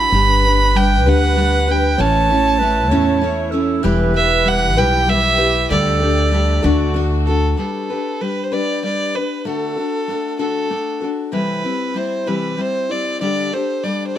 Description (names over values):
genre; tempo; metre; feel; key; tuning
acoustic folk duo or small band; 64 BPM (dotted quarters); 6/8; straight; G major; A4 = 440 Hz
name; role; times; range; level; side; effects
warm fiddle; melody; 0.0-14.2 s; A4 to B5; -19 LUFS; right 2 dB; none
picked steel-string acoustic guitar; accompaniment; 0.0-14.2 s; A2 to C#5; -20 LUFS; left 3 dB; none
muted chamber string section; sustained chords; 0.0-7.6 s; D3 to B4; -28 LUFS; equal; none
upright bass; bass; 0.0-7.5 s; E1 to E2; -18 LUFS; equal; none
dark clarinet; second line; 0.1-7.3 s; F#4 to C#5; -23 LUFS; right 6 dB; tape echo
room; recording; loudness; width
little or no reverb; close, detailed microphones; -15 LUFS; side -11 dB against mid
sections
0.0-7.6 A section; 7.6-14.2 B section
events
none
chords
0.1 G; 2.0 A; 3.8 Em; 5.7 Dsus4; 6.6 D; 7.6 G; 9.4 D; 11.3 C; 13.2 Dsus4